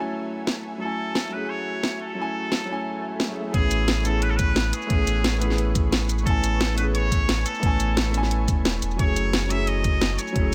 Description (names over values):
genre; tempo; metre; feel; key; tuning
liquid drum and bass; 176 BPM; 4/4; straight; A major; A4 = 441 Hz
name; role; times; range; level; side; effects
trumpet with straight mute; melody; 0.0-10.5 s; G#4 to E5; -32 LUFS; equal; delay
warm baby grand piano; accompaniment; 0.0-10.5 s; F#3 to G#5; -31 LUFS; equal; none
ethereal airy pad; sustained chords; 0.0-10.5 s; A3 to C#6; -41 LUFS; equal; ensemble chorus, built-in reverb
garage drum kit; drums; 0.5-10.4 s; hi-hat, shaker, snare drum; -28 LUFS; equal; none
swell; sound effects; 2.9-3.5 s; none; -43 LUFS; equal; none
warm sub bass; bass; 3.5-10.5 s; E1 to A1; -27 LUFS; equal; none
electronic kick drum; drums; 3.5-10.4 s; none; -25 LUFS; equal; none
room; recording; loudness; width
digital ambience; none; -24 LUFS; mono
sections
0.0-3.5 A section; 3.5-10.5 B section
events
swell 2.9-3.5; drop 3.5-10.5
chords
0.0 F#m9; 3.5 Amaj9; 9.0 F#m9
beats
0.13 0.47 | 0.81 1.15 1.49 1.83 | 2.17 2.52 2.86 3.20 | 3.54 3.88 4.22 4.56 | 4.90 5.24 5.58 5.92 | 6.27 6.61 6.95 7.29 | 7.63 7.97 8.31 8.65 | 8.99 9.33 9.68 10.02 | 10.36